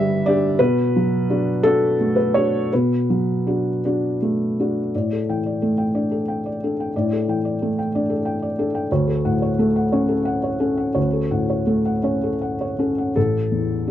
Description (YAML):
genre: neoclassical minimalist piano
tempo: 53-62 BPM (dotted quarters)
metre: 6/8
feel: rubato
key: unclear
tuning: A4 = 438 Hz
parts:
  - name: felt-muted upright piano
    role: solo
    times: 0.0-13.9 s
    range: A1 to G5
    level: -18 LUFS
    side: equal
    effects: none
room: light reverb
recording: dry, close 1970s-style studio recording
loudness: -18 LUFS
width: side -11 dB against mid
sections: 0.0-4.9 A section; 4.9-13.2 B section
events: none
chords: 0.0 G; 0.6 Bm7; 4.9 A7sus4; 8.9 Dmaj7; 13.2 A5